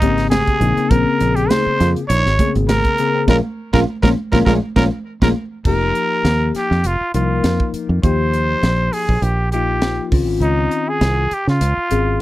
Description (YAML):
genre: electric jazz fusion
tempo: 101 BPM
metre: 4/4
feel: swing 54% on 16ths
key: Bb dorian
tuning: A4 = 441 Hz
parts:
  - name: trumpet with straight mute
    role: melody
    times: 0.0-12.2 s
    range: Eb4 to Db5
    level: -20 LUFS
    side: right 1 dB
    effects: none
  - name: bell-like tine electric piano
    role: accompaniment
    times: 0.0-12.2 s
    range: Db3 to Bb4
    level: -20 LUFS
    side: left 6 dB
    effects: phaser
  - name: clean electric guitar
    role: stabs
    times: 0.0-5.3 s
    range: Bb3 to F4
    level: -24 LUFS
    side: right 5 dB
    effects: ensemble chorus
  - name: fingered electric bass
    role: bass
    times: 0.0-12.2 s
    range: F1 to Db3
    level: -18 LUFS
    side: right 1 dB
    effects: none
  - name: crisp fusion drum kit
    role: drums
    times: 0.0-12.1 s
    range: crash cymbal, hi-hat, kick drum, snare drum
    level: -20 LUFS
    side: equal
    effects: none
  - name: congas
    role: percussion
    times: 0.3-5.3 s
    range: none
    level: -24 LUFS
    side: right 4 dB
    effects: none
room: little or no reverb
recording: dry, close 1970s-style studio recording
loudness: -14 LUFS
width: side -16 dB against mid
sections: 0.0-5.7 A section; 5.7-12.2 B section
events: drum fill 3.3-5.7; band accent 3.3-5.7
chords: 0.0 Bbm9; 5.7 F9sus4; 10.1 Dbmaj9